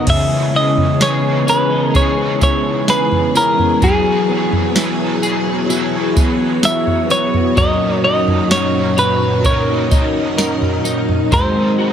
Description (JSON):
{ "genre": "dream pop", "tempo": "64 BPM", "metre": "4/4", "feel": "straight", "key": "C# dorian", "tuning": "A4 = 440 Hz", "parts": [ { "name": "semi-hollow electric guitar", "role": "melody", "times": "0.0-11.9 s", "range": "G#4 to E5", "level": "-17 LUFS", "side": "right 1 dB", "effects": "digital delay" }, { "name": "raw garage guitar", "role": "accompaniment", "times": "0.0-11.9 s", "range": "G#2 to A#4", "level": "-23 LUFS", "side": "right 4 dB", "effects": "overdrive, harmonic tremolo, analog chorus" }, { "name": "string machine, full ensemble", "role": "sustained chords", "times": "0.0-11.9 s", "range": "F#2 to D#5", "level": "-20 LUFS", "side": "equal", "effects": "ensemble chorus" }, { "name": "twelve-string electric guitar", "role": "arpeggios", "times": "0.0-11.9 s", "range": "C#3 to D#5", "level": "-20 LUFS", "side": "left 4 dB", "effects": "analog chorus, digital delay" }, { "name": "soft vintage rhythm box", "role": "drums", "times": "0.1-11.5 s", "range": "crash cymbal, kick drum, snare drum, tambourine, toms", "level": "-17 LUFS", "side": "right 1 dB", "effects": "none" } ], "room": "light reverb", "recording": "none", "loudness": "-13 LUFS", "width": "side -8 dB against mid", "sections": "0.1-11.9 A section", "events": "none", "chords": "0.1 C#m9; 3.8 F#9sus4; 7.6 D#m7/F#; 11.3 G#9", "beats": "| 0.07 1.01 1.94 2.88 | 3.82 4.76 5.69 6.63 | 7.57 8.51 9.44 10.38 | 11.32" }